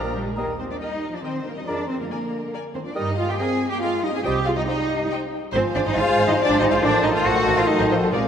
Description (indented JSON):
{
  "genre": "quick classical-period movement for symphony orchestra",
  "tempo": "140 BPM",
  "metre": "3/4",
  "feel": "straight",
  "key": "Eb major",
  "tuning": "A4 = 440 Hz",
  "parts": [
    { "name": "warm studio violin section", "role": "melody", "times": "0.0-8.3 s", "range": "Eb5 to Bb5", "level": "-38 LUFS", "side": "left 3 dB", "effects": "none" },
    { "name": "dark clarinet", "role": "second line", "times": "0.0-8.3 s", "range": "A4 to C5", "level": "-31 LUFS", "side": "left 2 dB", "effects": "none" },
    { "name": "mellow hollow concert flute", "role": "second line", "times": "0.0-8.3 s", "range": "F5 to Bb5", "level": "-32 LUFS", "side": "left 1 dB", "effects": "none" },
    { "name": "warm cor anglais", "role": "second line", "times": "0.0-8.3 s", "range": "C5 to Eb5", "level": "-33 LUFS", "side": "right 1 dB", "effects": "none" },
    { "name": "warm symphonic violin section", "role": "second line", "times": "0.0-8.2 s", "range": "F4 to Ab5", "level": "-29 LUFS", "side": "left 3 dB", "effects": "none" },
    { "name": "dark bassoon", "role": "accompaniment", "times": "0.0-8.3 s", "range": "Eb3 to Ab3", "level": "-30 LUFS", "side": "right 1 dB", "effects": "none" },
    { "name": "warm chamber viola section", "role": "accompaniment", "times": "0.0-8.2 s", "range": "F3 to Eb5", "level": "-30 LUFS", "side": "right 1 dB", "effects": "none" },
    { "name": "warm French horn section", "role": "sustained chords", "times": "0.0-8.3 s", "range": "A2 to D4", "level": "-29 LUFS", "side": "left 2 dB", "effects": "none" },
    { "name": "dark chamber double bass section", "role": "bass", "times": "0.0-8.2 s", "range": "Ab1 to G2", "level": "-30 LUFS", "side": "right 3 dB", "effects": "none" },
    { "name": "warm chamber cello section", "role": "bass", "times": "0.0-8.3 s", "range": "Bb2 to Ab4", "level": "-24 LUFS", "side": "right 1 dB", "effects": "none" },
    { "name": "timpani", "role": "percussion", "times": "0.4-1.0, 8.1-8.3 s", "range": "Bb2 to Eb3", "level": "-40 LUFS", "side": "equal", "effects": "none" }
  ],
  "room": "wet concert hall reverb, RT60 2.6 s",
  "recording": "none",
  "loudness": "-19 LUFS",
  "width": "side -8 dB against mid",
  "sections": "0.4-8.3 A section",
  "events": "none",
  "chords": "0.4 Eb; 1.7 Bb/F; 3.0 Eb/G; 4.3 Cm; 5.5 Fm/Ab; 6.8 Adim7"
}